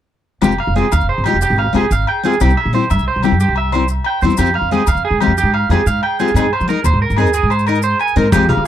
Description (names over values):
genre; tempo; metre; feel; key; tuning
highlife guitar band; 121 BPM (dotted quarters); 12/8; straight; F minor; A4 = 439 Hz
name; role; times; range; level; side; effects
picked steel-string acoustic guitar; accompaniment; 0.4-8.4 s; G3 to Bb4; -17 LUFS; left 7 dB; none
electric guitar at the edge of break-up; arpeggios; 0.4-8.6 s; G4 to Ab5; -17 LUFS; right 6 dB; tape echo
upright bass; bass; 0.4-8.7 s; F1 to F3; -16 LUFS; equal; none
agogo bells; percussion; 0.4-8.7 s; none; -25 LUFS; left 21 dB; none
maracas; percussion; 0.4-8.4 s; none; -32 LUFS; left 23 dB; none
percussive tonewheel organ; sustained chords; 8.3-8.7 s; F4 to Ab4; -20 LUFS; left 1 dB; slow rotary speaker, chorus vibrato
vintage drum kit; drums; 8.3-8.6 s; hi-hat, kick drum; -19 LUFS; right 1 dB; none
congas; percussion; 8.3-8.7 s; none; -17 LUFS; left 2 dB; none
room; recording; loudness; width
little or no reverb; dry, close 1970s-style studio recording; -13 LUFS; side -10 dB against mid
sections
0.4-8.3 A section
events
none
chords
0.4 Fmadd9; 2.4 C; 4.4 Fmadd9; 6.4 Abadd9